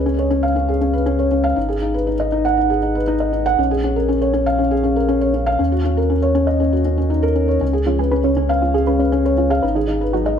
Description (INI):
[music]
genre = piano and strings electronica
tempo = 119 BPM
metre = 4/4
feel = straight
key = unclear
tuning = A4 = 438 Hz
[part]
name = felt-muted upright piano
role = riff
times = 0.0-10.4 s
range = Db4 to Gb5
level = -17 LUFS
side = left 1 dB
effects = ping-pong delay
[part]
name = warm sub bass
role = bass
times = 0.0-10.4 s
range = Ab1 to Eb2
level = -21 LUFS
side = right 1 dB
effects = none
[part]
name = soft round pluck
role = arpeggios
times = 7.6-10.3 s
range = Db4 to Cb5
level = -23 LUFS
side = right 3 dB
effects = chorus, cassette tape, ping-pong delay
[sound]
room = moderate echo chamber reverb, RT60 1.4 s, studio ambience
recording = none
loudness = -15 LUFS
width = side -8 dB against mid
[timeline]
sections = 0.0-10.4 A section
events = none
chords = 0.0 Db7; 1.6 Abm7; 3.6 Bbm7; 5.6 Ebm7; 7.6 Db7; 9.6 Abm7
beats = 0.05 0.56 1.06 | 1.57 2.07 2.57 3.08 | 3.58 4.09 4.59 5.09 | 5.60 6.10 6.61 7.11 | 7.62 8.12 8.62 9.13 | 9.63 10.14